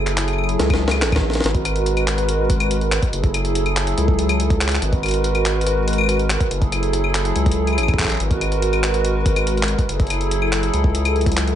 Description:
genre	IDM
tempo	142 BPM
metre	4/4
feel	straight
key	unclear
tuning	A4 = 440 Hz
part	hollow soft pad	sustained chords	0.0-11.6 s	Gb3 to Cb5	-21 LUFS	right 1 dB	chorus
part	round analog bass	bass	0.0-11.5 s	Gb1 to Db2	-21 LUFS	equal	tube saturation
part	jungle sampler-style drum kit	drums	0.1-11.6 s	claves, handclaps, hi-hat, snare drum	-23 LUFS	left 2 dB	tape echo
part	electronic kick drum	drums	0.7-11.3 s	none	-20 LUFS	equal	none
room	light reverb, digital ambience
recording	nothing above 10.7 kHz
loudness	-16 LUFS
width	side -10 dB against mid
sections	0.0-1.4 A section; 1.4-11.6 B section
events	drum fill 0.6-1.4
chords	0.0 Gbm9; 1.4 Abm9; 3.1 Gbm9; 4.8 Abm9; 6.5 Gbm9; 8.2 Abm9; 9.9 Gbm9

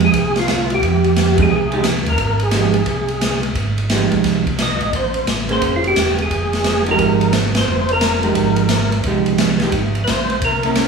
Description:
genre	soul jazz organ trio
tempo	175 BPM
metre	4/4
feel	swing 64% on 8ths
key	F minor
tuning	A4 = 436 Hz
part	percussive tonewheel organ	melody	0.0-10.9 s	F4 to Eb5	-19 LUFS	equal	slow rotary speaker, chorus vibrato
part	vintage hollow-body jazz guitar	accompaniment	0.0-10.9 s	F3 to C5	-19 LUFS	right 6 dB	none
part	mellow tonewheel organ	bass	0.0-10.9 s	E1 to F2	-21 LUFS	right 1 dB	slow rotary speaker
part	swinging big-band drum kit	drums	0.0-10.9 s	hi-hat, kick drum, ride cymbal, snare drum	-19 LUFS	equal	none
room	wet large studio reverb, RT60 1.2 s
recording	band playing live in one room, small room ambience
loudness	-14 LUFS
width	side -5 dB against mid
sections	0.0-10.9 A section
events	band accent 1.3, 7.5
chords	0.0 Fm9; 4.9 Bbm9; 6.3 Fm9

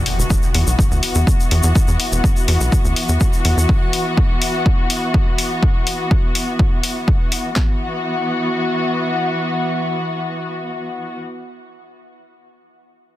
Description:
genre	melodic techno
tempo	124 BPM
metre	4/4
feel	straight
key	unclear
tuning	A4 = 440 Hz
part	muted studio string section	sustained chords	0.0-11.2 s	E3 to F#4	-21 LUFS	left 1 dB	sidechain pumping
part	tight sequencer bass	bass	0.0-3.7 s	E1 to E2	-16 LUFS	equal	tube saturation, sidechain pumping
part	impact	sound effects	0.0-1.8 s	none	-27 LUFS	equal	none
part	electronic hi-hat	drums	0.1-7.4 s	none	-22 LUFS	left 2 dB	none
part	tube shaker	percussion	0.2-3.7 s	none	-27 LUFS	left 2 dB	none
part	punchy analog drum machine	drums	0.3-7.7 s	handclaps, kick drum, snare drum	-16 LUFS	equal	none
room	little or no reverb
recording	dense, heavily limited modern master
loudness	-15 LUFS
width	side -15 dB against mid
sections	0.0-7.6 A section; 7.6-11.4 B section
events	impact 0.0-1.8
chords	0.0 E5

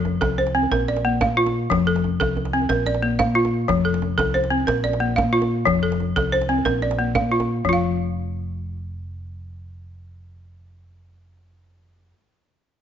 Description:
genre	west african traditional, West African string and xylophone music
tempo	121 BPM (dotted quarters)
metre	12/8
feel	straight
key	unclear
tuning	A4 = 444 Hz
part	balafon	arpeggios	0.0-12.2 s	F3 to F5	-20 LUFS	left 1 dB	none
part	hollow-body short-scale fingered electric bass	bass	0.0-12.1 s	F1 to Bb2	-26 LUFS	right 1 dB	none
part	djembe	percussion	0.1-7.8 s	none	-29 LUFS	right 4 dB	none
room	moderate recital hall reverb, RT60 1.4 s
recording	nothing above 7.6 kHz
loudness	-19 LUFS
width	side -9 dB against mid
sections	0.0-7.6 A section; 7.6-11.6 B section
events	none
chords	0.0 F; 0.7 Bb; 1.7 F; 2.7 Bb; 3.7 F; 4.7 Bb; 5.7 F; 6.7 Bb; 7.6 N.C.

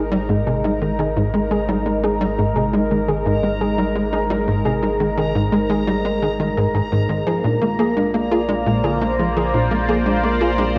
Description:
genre	ambient, sequencer-driven space music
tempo	86 BPM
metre	4/4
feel	straight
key	Ab lydian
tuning	A4 = 440 Hz
part	sweeping resonant pad	sustained chords	0.0-10.8 s	Ab3 to D5	-24 LUFS	equal	chorus
part	soft round pluck	arpeggios	0.0-10.8 s	Ab2 to Ab4	-27 LUFS	equal	chorus, tape echo
part	tight sequencer bass	riff	0.0-10.8 s	Ab2 to F4	-23 LUFS	equal	ensemble chorus, cassette tape, tape echo
part	warm sub bass	bass	0.0-10.8 s	Ab1 to Bb1	-30 LUFS	equal	none
part	bubbling stepped-filter texture	texture	0.0-10.8 s	Bb5	-33 LUFS	equal	chorus, built-in reverb
room	wet scoring stage reverb, RT60 2.1 s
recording	worn, warbling old tape, cassette tape, warbly pitch drift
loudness	-19 LUFS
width	mono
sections	0.0-10.8 A section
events	none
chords	0.0 Ab; 7.3 Bb

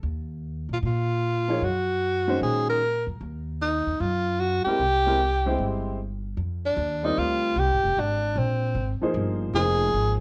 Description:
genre	modal jazz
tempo	152 BPM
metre	4/4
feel	swing 66% on 8ths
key	F dorian from 6.4 s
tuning	A4 = 440 Hz
part	upright bass	bass	0.0-10.2 s	F1 to Bb2	-30 LUFS	equal	none
part	breathy tenor saxophone	melody	0.7-10.2 s	C4 to Bb4	-27 LUFS	equal	plate reverb
part	warm upright piano	accompaniment	1.5-10.2 s	Eb3 to D5	-30 LUFS	equal	none
room	light reverb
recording	worn, warbling old tape, cassette tape, warbly pitch drift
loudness	-25 LUFS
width	mono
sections	0.0-6.4 A section; 6.4-10.2 B section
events	none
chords	0.0 Ebm11; 4.8 C(b13); 6.4 Fm9

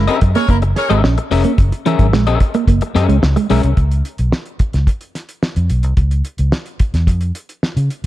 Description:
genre	funk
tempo	109 BPM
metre	4/4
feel	straight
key	unclear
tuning	A4 = 440 Hz
part	clear horn section	second line	0.0-1.0 s	Bb3 to Db5	-20 LUFS	left 1 dB	none
part	mellow electric guitar	riff	0.0-3.6 s	Fb3 to Db4	-19 LUFS	right 8 dB	none
part	vintage muted fingered electric bass	bass	0.0-8.1 s	F1 to Db3	-15 LUFS	equal	none
part	electric guitar at the edge of break-up	accompaniment	0.1-3.7 s	Db4 to Fb5	-19 LUFS	left 8 dB	spring reverb
part	cloth-damped thuddy drum kit	drums	0.1-8.1 s	hi-hat, kick drum, snare drum	-17 LUFS	equal	none
room	studio reverb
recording	dark, warm production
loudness	-13 LUFS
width	side -14 dB against mid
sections	0.0-3.8 A section; 3.8-8.1 B section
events	none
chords	0.0 Gb9; 3.8 Db

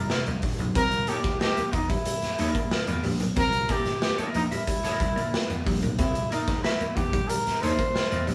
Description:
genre	funk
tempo	92 BPM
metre	4/4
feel	straight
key	C mixolydian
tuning	A4 = 440 Hz
part	breathy trumpet	melody	0.0-8.3 s	Eb4 to C5	-31 LUFS	equal	none
part	semi-hollow electric guitar	accompaniment	0.0-8.3 s	E4 to E5	-36 LUFS	equal	none
part	vintage slap bass	bass	0.0-8.3 s	Bb1 to C3	-32 LUFS	equal	none
part	raw garage drum kit	drums	0.1-8.3 s	hi-hat, kick drum, snare drum	-30 LUFS	equal	none
part	congas	percussion	0.1-8.3 s	none	-41 LUFS	equal	none
part	semi-hollow electric guitar	riff	0.8-8.3 s	G3 to C4	-36 LUFS	equal	none
room	moderate studio ambience, RT60 0.5 s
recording	band playing live in one room, small room ambience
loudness	-26 LUFS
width	mono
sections	0.0-8.3 A section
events	none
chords	0.0 C9

